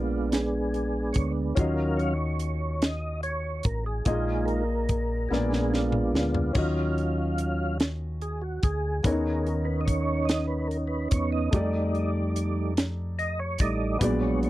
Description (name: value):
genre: slow gospel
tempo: 48 BPM (dotted quarters)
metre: 6/8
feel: straight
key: Eb minor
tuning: A4 = 440 Hz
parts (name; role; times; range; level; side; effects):
- warm grand piano; accompaniment; 0.0-14.5 s; Bb2 to Eb5; -32 LUFS; left 3 dB; none
- percussive tonewheel organ; sustained chords; 0.0-14.5 s; Gb3 to F5; -29 LUFS; right 2 dB; fast rotary speaker, chorus vibrato
- fingered electric bass; bass; 0.0-14.5 s; A1 to F2; -29 LUFS; equal; none
- tight funk drum kit; drums; 0.3-14.5 s; hi-hat, kick drum, snare drum, splash cymbal, toms; -26 LUFS; equal; none
room: little or no reverb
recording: dry, close 1970s-style studio recording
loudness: -24 LUFS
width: side -16 dB against mid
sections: 0.0-14.5 A section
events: tonewheel organ solo 0.0-14.5; drum fill 5.3-6.6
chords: 0.0 Bb7b9; 1.6 Ebm9; 4.1 Bb7sus4; 5.3 Bb7b9; 6.6 Ebm9; 9.0 Bmaj9/D#; 11.5 F13